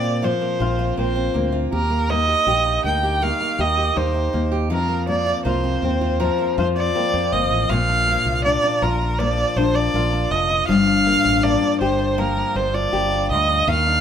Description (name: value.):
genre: acoustic pop.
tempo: 80 BPM.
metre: 4/4.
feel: straight.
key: Bb major.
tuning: A4 = 440 Hz.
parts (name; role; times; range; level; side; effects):
warm violin; melody; 0.0-14.0 s; Bb4 to G5; -21 LUFS; right 2 dB; none.
nylon-string guitar; accompaniment; 0.0-14.0 s; F2 to G4; -23 LUFS; left 6 dB; none.
picked steel-string acoustic guitar; arpeggios; 0.0-14.0 s; Eb3 to G4; -28 LUFS; right 6 dB; none.
fingered electric bass; bass; 0.0-14.0 s; F1 to Bb2; -24 LUFS; equal; none.
room: moderate large studio reverb, RT60 0.8 s.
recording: band playing live in one room.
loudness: -17 LUFS.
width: side -8 dB against mid.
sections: 0.0-7.7 A section; 7.7-14.0 B section.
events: none.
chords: 0.0 Bbsus2; 1.7 Eb; 4.7 Fsus4; 7.7 Bb; 10.7 Gm7.